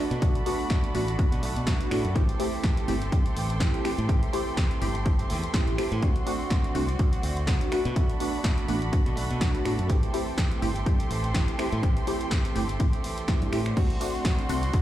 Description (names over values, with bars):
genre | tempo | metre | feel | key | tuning
filtered disco house | 124 BPM | 4/4 | swing 56% on 16ths | A dorian | A4 = 440 Hz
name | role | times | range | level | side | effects
funky polysynth comp | accompaniment | 0.0-14.8 s | A3 to G4 | -31 LUFS | equal | chorus, phaser, sidechain pumping
muted studio violin section | sustained chords | 0.0-14.8 s | F#4 to C6 | -37 LUFS | equal | sidechain pumping
direct-recorded clean electric guitar | riff | 0.0-14.8 s | E3 to G4 | -36 LUFS | right 4 dB | sidechain pumping
modern bright fingered electric bass | bass | 0.1-14.8 s | G1 to B2 | -29 LUFS | equal | sidechain pumping
punchy analog drum machine | drums | 0.1-14.8 s | crash cymbal, finger snaps, hi-hat, ride cymbal, snare drum | -35 LUFS | equal | sidechain pumping on hats, sidechain pumping on cymbals
electronic kick drum | drums | 0.2-14.8 s | none | -25 LUFS | equal | none
tambourine | percussion | 13.8-14.8 s | none | -47 LUFS | left 6 dB | none
room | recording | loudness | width
little or no reverb | played on a big sound system in a bare room, stone room reverb | -24 LUFS | side -13 dB against mid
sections
0.0-14.8 A section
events
none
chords
0.0 Bm7; 2.2 Am7; 6.0 D7; 7.7 Bm7; 9.9 Am7; 13.8 D7